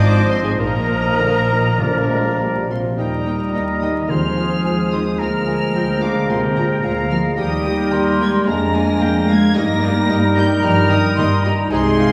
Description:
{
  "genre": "quick classical-period movement for symphony orchestra",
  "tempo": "98-113 BPM",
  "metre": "4/4",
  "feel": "rubato",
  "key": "Eb major",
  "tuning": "A4 = 440 Hz",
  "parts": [
    { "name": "rich studio violin section", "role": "melody", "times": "0.0-12.1 s", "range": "Ab5 to Bb6", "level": "-31 LUFS", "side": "equal", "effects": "none" },
    { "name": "bright silver concert flute", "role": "second line", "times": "0.0-12.1 s", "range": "Ab4 to C6", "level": "-29 LUFS", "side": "equal", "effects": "none" },
    { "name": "clear oboe", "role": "second line", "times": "0.0-12.1 s", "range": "Ab4 to Eb5", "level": "-30 LUFS", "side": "equal", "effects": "none" },
    { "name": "rich studio violin section", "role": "second line", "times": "0.0-12.1 s", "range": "G4 to Ab5", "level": "-36 LUFS", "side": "equal", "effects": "none" },
    { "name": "warm clarinet", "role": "second line", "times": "0.0-12.1 s", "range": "D4 to C5", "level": "-29 LUFS", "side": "equal", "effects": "none" },
    { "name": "rich studio viola section", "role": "accompaniment", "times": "0.0-12.1 s", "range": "Ab3 to G4", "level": "-31 LUFS", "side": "equal", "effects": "none" },
    { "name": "warm bassoon", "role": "accompaniment", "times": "0.0-12.1 s", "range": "F3 to Ab3", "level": "-28 LUFS", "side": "equal", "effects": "none" },
    { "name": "dark French horn section", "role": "sustained chords", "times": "0.0-12.1 s", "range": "D3 to Eb4", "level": "-25 LUFS", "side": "equal", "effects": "none" },
    { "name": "bright trumpet section", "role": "stabs", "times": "0.0-12.1 s", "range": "Ab4 to C5", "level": "-28 LUFS", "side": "equal", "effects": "none" },
    { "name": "rich studio cello section", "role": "bass", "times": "0.0-12.1 s", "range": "Ab2 to Bb3", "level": "-25 LUFS", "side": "equal", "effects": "none" },
    { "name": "rich studio double bass section", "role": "bass", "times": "0.0-12.1 s", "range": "Ab1 to G2", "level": "-24 LUFS", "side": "equal", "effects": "none" },
    { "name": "timpani", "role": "percussion", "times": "1.8-4.9 s", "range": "Bb2 to Eb3", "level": "-27 LUFS", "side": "equal", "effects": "none" }
  ],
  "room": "wet recital hall reverb, RT60 1.9 s",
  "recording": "heard from further back in the room, vinyl crackle",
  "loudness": "-17 LUFS",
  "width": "mono",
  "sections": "0.0-3.0 A section; 3.0-12.1 B section",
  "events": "none",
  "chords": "0.0 Fm7/Ab; 0.6 Bbsus4; 1.8 Bb; 3.0 Eb; 4.1 Fm7/Eb; 5.2 Bb7/D; 7.4 Eb; 8.5 Bb7/F; 9.6 Eb/G",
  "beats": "0.00 | 0.60 1.21 1.81 2.40 | 2.99 3.55 4.10 4.65 | 5.20 5.75 6.30 6.85 | 7.39 7.94 8.49 9.03 | 9.56 10.10 10.63 11.17 | 11.71"
}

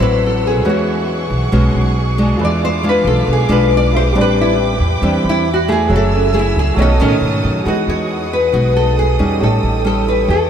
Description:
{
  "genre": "bossa nova",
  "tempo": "137 BPM",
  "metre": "4/4",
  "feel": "straight",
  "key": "E major",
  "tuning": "A4 = 444 Hz",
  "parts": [
    { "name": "nylon-string guitar", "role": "melody", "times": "0.0-10.5 s", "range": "C#4 to D5", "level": "-17 LUFS", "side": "left 1 dB", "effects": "lush chorus, diffuse ambient delay" },
    { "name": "nylon-string guitar", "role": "accompaniment", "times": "0.0-10.5 s", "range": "A2 to G#4", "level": "-18 LUFS", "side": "equal", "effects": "none" },
    { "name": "warm baby grand piano", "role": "accompaniment", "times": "0.0-10.5 s", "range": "E4 to E5", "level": "-26 LUFS", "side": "right 4 dB", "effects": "analog chorus" },
    { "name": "clear symphonic violin section", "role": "sustained chords", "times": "0.0-10.5 s", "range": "G#4 to E6", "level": "-25 LUFS", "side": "right 1 dB", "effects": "none" },
    { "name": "upright bass", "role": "bass", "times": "0.0-10.5 s", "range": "F#1 to A2", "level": "-17 LUFS", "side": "equal", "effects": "none" }
  ],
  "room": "moderate huge ambient reverb, RT60 7.1 s",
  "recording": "dreamy mix soaked in reverb",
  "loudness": "-12 LUFS",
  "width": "side -8 dB against mid",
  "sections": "0.0-7.7 A section; 7.7-10.5 B section",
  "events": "nylon-string guitar solo 0.0-7.7",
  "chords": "0.0 D9 (rootless); 0.6 E69; 2.4 E7b9; 4.2 Am11; 5.9 F#m9; 6.8 B9; 7.7 Emaj9; 9.4 A7#11",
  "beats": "0.21 | 0.65 1.08 1.52 1.96 | 2.40 2.84 3.27 3.71 | 4.15 4.59 5.03 5.46 | 5.90 6.34 6.78 7.22 | 7.66 8.10 8.53 8.97 | 9.41 9.85 10.29"
}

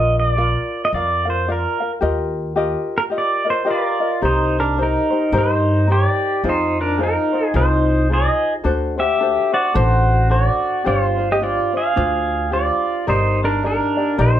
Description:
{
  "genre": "Hawaiian",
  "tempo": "109 BPM",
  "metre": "4/4",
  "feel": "swing 61% on 8ths",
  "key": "Eb major, C minor from 4.2 s",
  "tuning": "A4 = 440 Hz",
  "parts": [
    { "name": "pedal steel guitar", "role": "melody", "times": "0.0-14.4 s", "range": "D4 to F5", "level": "-18 LUFS", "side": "right 1 dB", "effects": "none" },
    { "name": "ukulele", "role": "accompaniment", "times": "0.0-14.4 s", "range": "D4 to F5", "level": "-23 LUFS", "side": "left 3 dB", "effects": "none" },
    { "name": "upright bass", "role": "bass", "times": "0.0-14.4 s", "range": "G1 to G2", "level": "-20 LUFS", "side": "equal", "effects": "none" }
  ],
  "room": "moderate large studio reverb, RT60 0.8 s",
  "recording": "band playing live in one room",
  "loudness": "-16 LUFS",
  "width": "side -11 dB against mid",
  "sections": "0.0-4.2 A section; 4.2-14.4 B section",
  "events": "none",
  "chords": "0.0 Bb; 2.0 Ebadd9; 4.2 Cm7; 6.4 Fm7; 8.6 D7; 10.9 G7sus4; 13.1 Ebmaj7/G",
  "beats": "0.38 0.93 1.48 | 2.03 2.58 3.13 3.69 | 4.24 4.79 5.34 5.89 | 6.44 6.99 7.54 8.10 | 8.65 9.20 9.75 10.31 | 10.86 11.41 11.97 12.52 | 13.07 13.63 14.18"
}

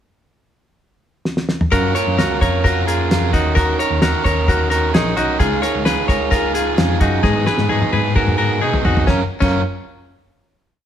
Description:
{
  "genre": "jangly indie pop",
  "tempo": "131 BPM",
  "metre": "4/4",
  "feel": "straight",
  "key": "F# major",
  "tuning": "A4 = 440 Hz",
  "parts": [
    { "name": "cloth-damped thuddy drum kit", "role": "drums", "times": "1.3-9.5 s", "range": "crash cymbal, hi-hat, kick drum, snare drum, toms", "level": "-19 LUFS", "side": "equal", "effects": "none" },
    { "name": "overdriven electric guitar", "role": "accompaniment", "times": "1.7-9.6 s", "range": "G#2 to A#4", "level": "-21 LUFS", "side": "right 6 dB", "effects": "none" },
    { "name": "direct-recorded clean electric guitar", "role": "arpeggios", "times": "1.7-9.6 s", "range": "C#4 to C#5", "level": "-19 LUFS", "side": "left 4 dB", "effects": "none" },
    { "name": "tine electric piano", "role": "bass", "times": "1.7-9.6 s", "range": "A#1 to B2", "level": "-20 LUFS", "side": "equal", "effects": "overdrive, fast stereo tremolo" }
  ],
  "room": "moderate stone room reverb, RT60 1.1 s",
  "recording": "band playing live in one room",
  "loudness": "-14 LUFS",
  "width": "side -10 dB against mid",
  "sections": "0.0-1.7 pickup bar; 1.7-9.1 verse; 9.1-10.9 final chord",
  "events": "drum fill 1.3-1.7, 7.2-9.1",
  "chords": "0.0 N.C.; 1.7 F#maj7; 3.3 D#m7; 5.4 C#add9; 7.2 G#m7; 9.1 F#maj7",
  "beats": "0.34 0.80 1.26 | 1.72 2.18 2.64 3.10 | 3.56 4.02 4.48 4.94 | 5.40 5.86 6.32 6.78 | 7.24 7.70 8.15 8.61 | 9.07 9.53"
}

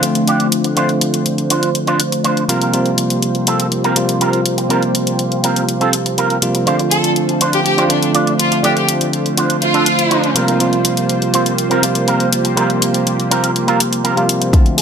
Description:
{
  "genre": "nu-disco, nu disco",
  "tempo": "122 BPM",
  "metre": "4/4",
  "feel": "straight",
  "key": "unclear",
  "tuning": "A4 = 439 Hz",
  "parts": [
    { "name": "bell-like tine electric piano", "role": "accompaniment", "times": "0.0-14.8 s", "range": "C3 to F4", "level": "-18 LUFS", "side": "equal", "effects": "low-pass filter, ping-pong delay" },
    { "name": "lush unison pad", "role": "sustained chords", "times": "0.0-14.8 s", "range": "A3 to C5", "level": "-20 LUFS", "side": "right 1 dB", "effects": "chorus, phaser, sidechain pumping" },
    { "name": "electric guitar with an envelope filter", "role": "riff", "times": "0.0-14.4 s", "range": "C4 to D5", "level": "-19 LUFS", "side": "right 3 dB", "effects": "ensemble chorus, low-pass filter, ping-pong delay" },
    { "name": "electronic hi-hat", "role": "drums", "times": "0.0-14.8 s", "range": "none", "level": "-18 LUFS", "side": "left 2 dB", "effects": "small room reverb" },
    { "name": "clear studio violin section", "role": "melody", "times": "6.9-10.3, 14.8 s", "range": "D4 to A4", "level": "-18 LUFS", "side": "equal", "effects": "low-pass filter, ping-pong delay" },
    { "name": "fingered electric bass with an envelope filter", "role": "bass", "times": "14.5-14.8 s", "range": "D2", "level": "-27 LUFS", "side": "equal", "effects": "none" },
    { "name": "electronic kick drum", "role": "drums", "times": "14.5-14.6 s", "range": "none", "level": "-10 LUFS", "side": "equal", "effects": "small room reverb" }
  ],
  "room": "light reverb",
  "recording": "none",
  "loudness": "-13 LUFS",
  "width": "side -7 dB against mid",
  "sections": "0.0-14.5 A section",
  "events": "filter sweep on analog synth pad 0.0-14.5",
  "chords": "0.0 Dm7; 2.5 C7sus4; 6.7 Dm7; 10.4 C7sus4",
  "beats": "0.27 | 0.77 1.26 1.75 2.24 | 2.73 3.23 3.72 4.21 | 4.70 5.19 5.68 6.18 | 6.67 7.16 7.65 8.14 | 8.63 9.13 9.62 10.11 | 10.60 11.09 11.59 12.08 | 12.57 13.06 13.55 14.04 | 14.54"
}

